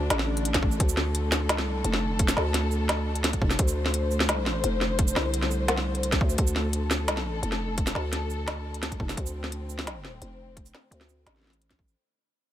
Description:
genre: half-time drum and bass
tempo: 172 BPM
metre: 4/4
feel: half-time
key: D minor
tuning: A4 = 440 Hz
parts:
  - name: dark studio string section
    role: sustained chords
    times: 0.0-12.0 s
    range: D3 to C5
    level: -33 LUFS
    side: left 4 dB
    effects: sidechain pumping
  - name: growling 808-style bass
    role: bass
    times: 0.0-11.9 s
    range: F1 to D2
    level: -28 LUFS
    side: equal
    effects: tube saturation
  - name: organic electronic drum kit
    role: drums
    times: 0.1-11.9 s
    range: hi-hat, shaker, snare drum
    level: -28 LUFS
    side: equal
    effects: none
  - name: swell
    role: sound effects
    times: 0.3-0.8 s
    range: none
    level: -40 LUFS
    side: equal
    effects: none
  - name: electronic kick drum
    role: drums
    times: 0.5-11.9 s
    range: none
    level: -26 LUFS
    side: equal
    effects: overdrive
room: light reverb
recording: none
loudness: -24 LUFS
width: side -12 dB against mid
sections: 0.0-12.0 A section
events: drop 0.0-12.0; swell 0.3-0.8; fade-out 6.4-12.0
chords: 0.0 D5

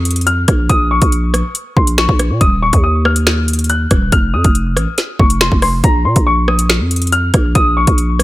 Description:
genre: hip hop, drill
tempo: 140 BPM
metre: 4/4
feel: half-time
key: Bb minor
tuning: A4 = 441 Hz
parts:
  - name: dark concert grand piano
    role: melody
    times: 0.0-8.2 s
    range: Bb5 to Gb6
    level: -17 LUFS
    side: left 2 dB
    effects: low-pass filter, ping-pong delay
  - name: growling 808-style bass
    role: bass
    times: 0.0-8.2 s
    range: Eb1 to Bb2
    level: -15 LUFS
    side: equal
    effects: none
  - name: drill drum kit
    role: drums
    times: 0.1-8.2 s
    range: finger snaps, hi-hat, kick drum, rim click, snare drum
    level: -14 LUFS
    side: equal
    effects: overdrive
room: digital ambience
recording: none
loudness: -11 LUFS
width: side -16 dB against mid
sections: 0.0-8.2 A section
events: none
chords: 0.0 Bbm; 2.4 Ebm; 4.1 F5; 5.8 Bbm

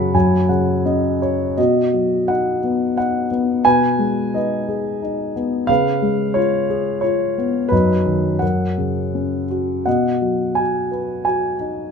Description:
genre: classical, lyrical solo piano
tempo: 82-91 BPM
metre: 3/4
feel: rubato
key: B major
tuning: A4 = 438 Hz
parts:
  - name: dark grand piano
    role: solo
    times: 0.0-11.9 s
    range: F#2 to B5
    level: -16 LUFS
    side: left 1 dB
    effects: none
room: light reverb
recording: none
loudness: -16 LUFS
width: side -6 dB against mid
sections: 0.0-1.6 A section; 1.6-11.9 A section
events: grand piano fill 0.0-1.6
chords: 0.0 F#sus4; 1.6 B; 3.6 G#m/B; 5.7 C#7; 7.7 B/F#; 8.4 F#; 9.9 B

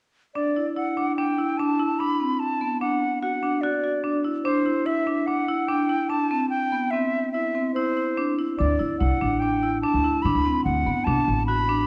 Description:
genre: contemporary instrumental, chamber music in an uneven meter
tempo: 146 BPM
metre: 5/4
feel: straight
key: D mixolydian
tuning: A4 = 440 Hz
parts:
  - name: concert flute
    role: melody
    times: 0.3-11.9 s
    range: C5 to B5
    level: -28 LUFS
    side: equal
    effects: none
  - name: marimba with hard mallets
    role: arpeggios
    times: 0.4-11.8 s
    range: B3 to F#4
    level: -27 LUFS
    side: equal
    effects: none
  - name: upright bass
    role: bass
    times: 8.6-11.9 s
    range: A1 to D3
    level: -28 LUFS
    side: equal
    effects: none
room: wet recital hall reverb, RT60 1.7 s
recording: worn, warbling old tape, cassette tape, warbly pitch drift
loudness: -24 LUFS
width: mono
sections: 0.4-11.9 A section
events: none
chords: 0.4 D; 4.5 Cadd9; 8.6 D

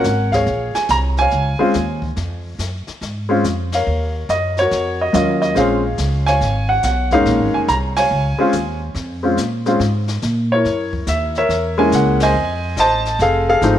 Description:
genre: jazz piano trio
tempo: 142 BPM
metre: 4/4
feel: swing 66% on 8ths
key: Bb minor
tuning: A4 = 440 Hz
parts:
  - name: warm baby grand piano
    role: melody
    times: 0.0-13.8 s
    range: F3 to Bb5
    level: -16 LUFS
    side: equal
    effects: none
  - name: upright bass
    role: bass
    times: 0.0-13.8 s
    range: F1 to Bb2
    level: -21 LUFS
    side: equal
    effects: none
  - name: jazz brush drum kit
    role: drums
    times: 0.0-13.8 s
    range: brushed snare drum, hi-hat, kick drum, ride cymbal, snare drum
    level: -30 LUFS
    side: left 4 dB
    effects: none
room: light reverb, studio reverb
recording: 1960s-style stereo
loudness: -15 LUFS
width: side -11 dB against mid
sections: 0.0-13.8 A section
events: band accent 3.6, 7.9, 12.1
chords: 0.5 Bbm7; 3.9 Ebm7; 5.6 Bbm7; 10.6 Gb7; 12.3 F7#9

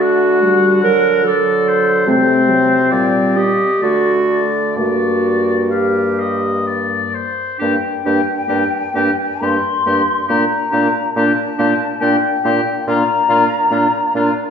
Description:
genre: classical, slow romantic movement for wind quintet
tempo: 62-73 BPM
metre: 3/4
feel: rubato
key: G minor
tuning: A4 = 438 Hz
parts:
  - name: warm oboe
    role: second line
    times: 0.0-14.3 s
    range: F4 to F#5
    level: -20 LUFS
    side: left 4 dB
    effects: none
  - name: clear clarinet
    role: accompaniment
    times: 0.0-14.3 s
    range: C4 to Bb4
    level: -17 LUFS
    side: right 2 dB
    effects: none
  - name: mellow French horn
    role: accompaniment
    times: 0.0-14.3 s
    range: F#3 to Bb3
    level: -22 LUFS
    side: left 2 dB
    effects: none
  - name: clear bassoon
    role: bass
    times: 0.0-14.3 s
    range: G2 to D3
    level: -22 LUFS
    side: equal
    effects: none
  - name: mellow hollow silver concert flute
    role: melody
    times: 7.6-14.3 s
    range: G5 to C6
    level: -18 LUFS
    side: left 4 dB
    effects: none
room: wet recital hall reverb, RT60 1.4 s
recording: heard from further back in the room, nothing above 7.9 kHz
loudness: -13 LUFS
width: side -7 dB against mid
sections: 0.0-7.6 A section; 7.6-14.5 B section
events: none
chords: 0.0 D; 2.1 F#dim/C; 2.9 Gm/Bb; 3.8 D; 4.8 Gm; 10.3 Gm/Bb

